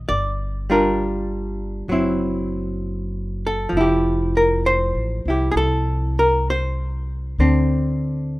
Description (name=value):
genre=jazz ballad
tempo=66 BPM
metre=4/4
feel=swing 68% on 8ths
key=unclear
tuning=A4 = 440 Hz
part: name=archtop guitar, miked and amplified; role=accompaniment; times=0.0-8.4 s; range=D3 to D5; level=-20 LUFS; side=equal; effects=plate reverb
part: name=upright bass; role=bass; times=0.0-8.4 s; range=F1 to D2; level=-24 LUFS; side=equal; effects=none
room=moderate small room reverb, RT60 0.5 s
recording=rough home demo mix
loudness=-18 LUFS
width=side -19 dB against mid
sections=0.0-8.4 A section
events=none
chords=0.1 Gm7; 1.9 F#m7b5; 3.7 Fmaj9; 7.4 D7(no3)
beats=| 0.07 0.98 1.89 2.81 | 3.73 4.64 5.56 6.47 | 7.38 8.28